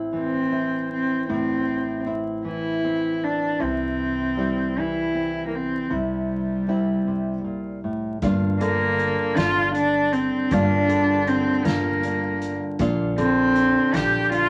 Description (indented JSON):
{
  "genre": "acoustic folk-pop ballad",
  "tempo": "52 BPM (dotted quarters)",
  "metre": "6/8",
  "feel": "straight",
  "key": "G dorian",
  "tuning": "A4 = 439 Hz",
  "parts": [
    { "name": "nylon-string guitar", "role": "accompaniment", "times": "0.0-14.5 s", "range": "G2 to F4", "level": "-28 LUFS", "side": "equal", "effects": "none" },
    { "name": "upright bass", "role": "bass", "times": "0.0-14.5 s", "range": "G1 to C2", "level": "-34 LUFS", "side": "equal", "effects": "none" },
    { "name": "warm cello", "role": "melody", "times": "0.2-14.5 s", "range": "G3 to G4", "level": "-25 LUFS", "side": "equal", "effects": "none" },
    { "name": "soft-mallet drum kit", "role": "drums", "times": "8.2-14.5 s", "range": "hi-hat, kick drum, snare drum", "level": "-34 LUFS", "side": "equal", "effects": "none" }
  ],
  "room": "moderate studio reverb, RT60 0.5 s",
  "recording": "vinyl crackle",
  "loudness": "-23 LUFS",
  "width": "mono",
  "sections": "0.0-8.2 A section; 8.2-14.5 B section",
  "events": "none",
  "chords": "0.0 Am; 3.6 C; 8.2 Gm7; 12.8 Bb"
}